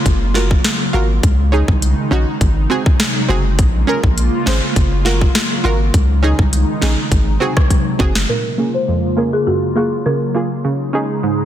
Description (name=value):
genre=dancehall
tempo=102 BPM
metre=4/4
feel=straight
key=Bb minor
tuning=A4 = 441 Hz
part: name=airy breathy pad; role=sustained chords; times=0.0-11.4 s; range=C3 to Ab4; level=-21 LUFS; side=equal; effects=chorus, sidechain pumping, low-pass filter
part: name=punchy sub bass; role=bass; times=0.1-8.3 s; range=Gb1 to Db2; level=-16 LUFS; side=equal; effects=none
part: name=island pop drum kit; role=drums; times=0.1-8.3 s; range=hi-hat, kick drum, rim click, snare drum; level=-16 LUFS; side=equal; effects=none
part: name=analog pluck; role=accompaniment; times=0.3-11.4 s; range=F2 to C5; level=-20 LUFS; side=right 3 dB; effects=chorus, low-pass filter
part: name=folk marimba with medium mallets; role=melody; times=8.3-10.5 s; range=Gb4 to C5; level=-20 LUFS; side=left 1 dB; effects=low-pass filter, ping-pong delay
room=light reverb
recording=dense, heavily limited modern master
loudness=-13 LUFS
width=side -11 dB against mid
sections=0.0-8.3 A section; 8.3-11.4 B section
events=drum fill 7.7-8.3; filter sweep 8.3-11.4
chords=0.1 Gbmaj7; 1.2 Dbsus2; 2.4 Ab7; 3.6 Bbm7; 4.8 Gbmaj7; 5.9 Dbsus2; 7.1 Ab7; 8.3 Bbm7; 9.5 Gbmaj7; 10.6 Dbsus2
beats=0.06 0.65 | 1.23 1.82 2.41 3.00 | 3.59 4.17 4.76 5.35 | 5.94 6.53 7.12 7.71 | 8.29 8.88 9.47 10.06 | 10.65 11.23